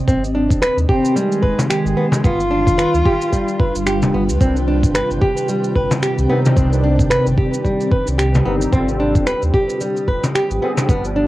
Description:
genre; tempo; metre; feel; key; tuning
organic downtempo; 111 BPM; 4/4; swing 58% on 16ths; C harmonic minor; A4 = 440 Hz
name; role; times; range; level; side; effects
ethereal airy pad; sustained chords; 0.0-11.3 s; C3 to Eb6; -22 LUFS; equal; ensemble chorus, built-in reverb, sidechain pumping, cassette tape
flamenco guitar; arpeggios; 0.1-11.3 s; G3 to B4; -19 LUFS; right 1 dB; vintage 12-bit sampler grit, cassette tape, tape echo
warm sub bass; bass; 0.1-11.3 s; D1 to Eb2; -21 LUFS; equal; sidechain pumping
electronic kick drum; drums; 0.1-11.0 s; none; -17 LUFS; equal; overdrive, small room ambience, cassette tape
electronic shaker and finger snaps; drums; 0.1-11.1 s; none; -27 LUFS; right 1 dB; overdrive, small room ambience, cassette tape
warm cello; melody; 0.9-3.9 s; Ab3 to F4; -19 LUFS; equal; cassette tape, tape echo
frame drum; percussion; 1.6-10.9 s; none; -20 LUFS; left 1 dB; none
barky tine electric piano; accompaniment; 4.4-11.3 s; D3 to Ab4; -25 LUFS; left 1 dB; overdrive, ensemble chorus, sidechain pumping, cassette tape, tape echo
room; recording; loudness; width
wet booth ambience, RT60 0.2 s; home recording on cassette; -14 LUFS; side -16 dB against mid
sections
0.0-11.3 A section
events
none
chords
0.1 Ab; 2.2 G7; 4.4 Cmadd9; 8.7 Ab

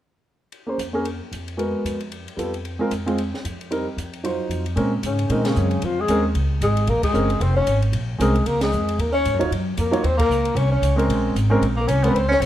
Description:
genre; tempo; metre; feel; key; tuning
jazz, small-group swing and bop; 227 BPM; 4/4; swing 58% on 8ths; Bb minor; A4 = 441 Hz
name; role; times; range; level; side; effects
open jazz drum kit; drums; 0.5-12.5 s; hi-hat, kick drum, ride cymbal, snare drum; -32 LUFS; left 1 dB; none
warm grand piano; accompaniment; 0.7-12.1 s; Gb3 to Db5; -23 LUFS; right 1 dB; none
upright bass; bass; 0.8-12.5 s; F1 to Bb2; -23 LUFS; equal; none
breathy tenor saxophone; second line; 5.0-12.5 s; Db3 to Db4; -25 LUFS; right 2 dB; none
breathy alto saxophone; melody; 5.1-12.5 s; Db4 to Db5; -24 LUFS; left 4 dB; none
room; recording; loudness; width
light reverb; none; -19 LUFS; side -12 dB against mid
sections
0.5-4.8 A section; 4.8-12.5 B section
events
band accent 5.4, 7.0, 8.6, 10.2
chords
0.5 Bbm7; 1.6 Abm9; 2.1 G9; 2.6 Fm; 3.7 Cm7; 4.2 F5; 4.8 Bbm9; 9.0 Ebm9; 11.1 Bbm9

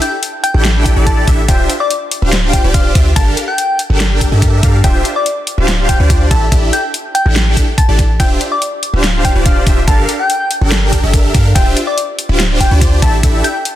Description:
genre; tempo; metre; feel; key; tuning
future bass; 143 BPM; 4/4; half-time; D minor; A4 = 438 Hz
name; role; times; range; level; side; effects
soft struck synth lead; melody; 0.0-13.5 s; D5 to A5; -18 LUFS; left 2 dB; chorus, sidechain pumping, digital delay
dubstep drum kit; drums; 0.0-13.7 s; hi-hat, snare drum; -19 LUFS; left 1 dB; none
supersaw chords; riff; 0.5-13.4 s; D4 to G5; -18 LUFS; equal; sidechain pumping
warm 808-style bass; bass; 0.5-13.4 s; D1 to G2; -13 LUFS; equal; sidechain pumping
electronic kick drum; drums; 0.9-13.3 s; none; -13 LUFS; equal; none
room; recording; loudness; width
digital ambience; dense, heavily limited modern master; -10 LUFS; side -13 dB against mid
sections
0.0-13.8 A section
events
none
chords
0.0 A7sus4; 1.5 Dm11; 3.2 Gm9; 4.8 Dm11; 6.3 A7sus4; 8.2 Dm11; 9.9 Gm9; 11.6 Dm11; 13.0 A7sus4

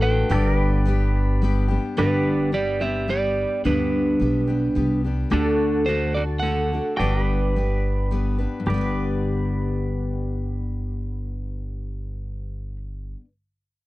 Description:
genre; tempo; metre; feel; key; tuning
country; 108 BPM; 3/4; straight; G major; A4 = 440 Hz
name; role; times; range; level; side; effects
electric guitar at the edge of break-up; melody; 0.0-8.1 s; D4 to G5; -24 LUFS; right 3 dB; none
picked steel-string acoustic guitar; accompaniment; 0.0-13.3 s; G2 to B4; -26 LUFS; left 4 dB; none
pedal steel guitar; sustained chords; 0.0-12.8 s; F#4 to D5; -32 LUFS; right 1 dB; lush chorus
upright bass; bass; 0.0-13.1 s; G1 to D2; -24 LUFS; equal; none
room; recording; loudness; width
light reverb; dry, close 1970s-style studio recording; -20 LUFS; side -17 dB against mid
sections
0.0-2.0 A section; 2.0-8.7 B section; 8.7-12.0 C section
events
none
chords
0.3 G; 5.3 D; 7.0 G

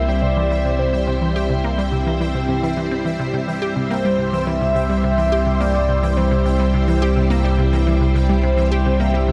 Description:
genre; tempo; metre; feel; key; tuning
ambient, sequencer-driven space music; 106 BPM; 4/4; straight; unclear; A4 = 440 Hz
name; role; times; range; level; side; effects
mellow horn-like synth lead; melody; 0.0-9.3 s; C5 to E5; -26 LUFS; equal; chorus, shimmer reverb, delay
string machine, full ensemble; sustained chords; 0.0-9.3 s; G3 to E5; -24 LUFS; equal; phaser, ensemble chorus, shimmer reverb
resonant blip pluck; riff; 0.0-9.3 s; C3 to G4; -25 LUFS; equal; chorus, shimmer reverb, delay
round analog bass; bass; 0.0-9.3 s; C2; -23 LUFS; equal; none
pulsing gated texture; texture; 0.0-9.3 s; G5; -35 LUFS; equal; chorus, built-in reverb, shimmer reverb
room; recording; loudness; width
wet lush hall reverb, RT60 2.5 s; dreamy mix soaked in reverb; -18 LUFS; mono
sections
0.0-9.3 A section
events
none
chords
0.0 C

